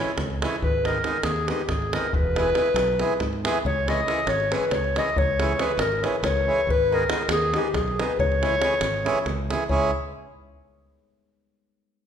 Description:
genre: balkan folk, Balkan wedding band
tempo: 278 BPM (eighths)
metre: 7/8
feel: straight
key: C# dorian sharp4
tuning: A4 = 440 Hz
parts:
  - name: mellow clarinet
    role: melody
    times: 0.0-9.9 s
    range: G4 to D#5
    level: -25 LUFS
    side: left 1 dB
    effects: none
  - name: accordion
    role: accompaniment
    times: 0.0-9.9 s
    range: D#3 to G#4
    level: -29 LUFS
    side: right 2 dB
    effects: none
  - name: modern bright fingered electric bass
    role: bass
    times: 0.2-9.9 s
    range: E1 to G#2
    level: -30 LUFS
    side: equal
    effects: none
  - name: davul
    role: percussion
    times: 0.2-9.9 s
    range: none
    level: -28 LUFS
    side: right 1 dB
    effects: none
  - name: kalimba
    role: second line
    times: 3.7-9.9 s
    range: G4 to D#5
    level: -30 LUFS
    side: left 4 dB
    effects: none
room: wet recital hall reverb, RT60 1.4 s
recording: minimal, uncompressed stereo recording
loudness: -21 LUFS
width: side -8 dB against mid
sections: 0.0-9.7 A section; 9.7-11.2 B section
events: none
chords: 0.0 C#m; 0.6 G#m; 2.1 E; 3.7 C#m; 6.7 G#m; 8.2 C#m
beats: 0.19 0.41 | 0.63 0.84 1.06 1.27 1.49 1.71 1.92 | 2.14 2.35 2.57 2.79 3.00 3.22 3.43 | 3.65 3.87 4.08 4.30 4.51 4.73 4.95 | 5.16 5.38 5.60 5.81 6.03 6.24 6.46 | 6.68 6.89 7.11 7.33 7.54 7.76 7.97 | 8.19 8.41 8.62 8.84 9.05 9.27 9.49 | 9.70

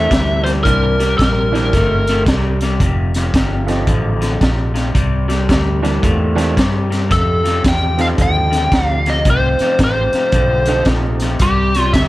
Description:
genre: electric blues shuffle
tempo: 112 BPM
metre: 4/4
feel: swing 63% on 8ths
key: C mixolydian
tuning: A4 = 436 Hz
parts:
  - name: biting lead guitar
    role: melody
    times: 0.0-2.2, 7.1-12.0 s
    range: G4 to G5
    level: -17 LUFS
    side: equal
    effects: overdrive
  - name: bright upright piano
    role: accompaniment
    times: 0.0-11.4 s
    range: E3 to G4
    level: -23 LUFS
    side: right 5 dB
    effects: none
  - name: electric guitar through a small old amp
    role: riff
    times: 0.0-12.1 s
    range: F2 to A3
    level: -20 LUFS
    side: left 2 dB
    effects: none
  - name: vintage muted fingered electric bass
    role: bass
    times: 0.0-12.1 s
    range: F1 to G2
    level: -18 LUFS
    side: equal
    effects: none
  - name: crunchy breakbeat drum kit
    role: drums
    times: 0.1-12.1 s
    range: hi-hat, kick drum, snare drum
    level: -18 LUFS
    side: equal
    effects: none
room: light reverb, small room reverb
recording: none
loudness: -13 LUFS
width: side -17 dB against mid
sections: 0.0-12.1 A section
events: none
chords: 0.0 C7; 2.8 F7; 5.0 C7; 7.1 F7; 11.4 C5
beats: 0.11 | 0.65 1.19 1.73 2.27 | 2.81 3.34 3.88 4.42 | 4.96 5.50 6.03 6.57 | 7.11 7.65 8.18 8.72 | 9.26 9.79 10.33 10.87 | 11.41 11.94

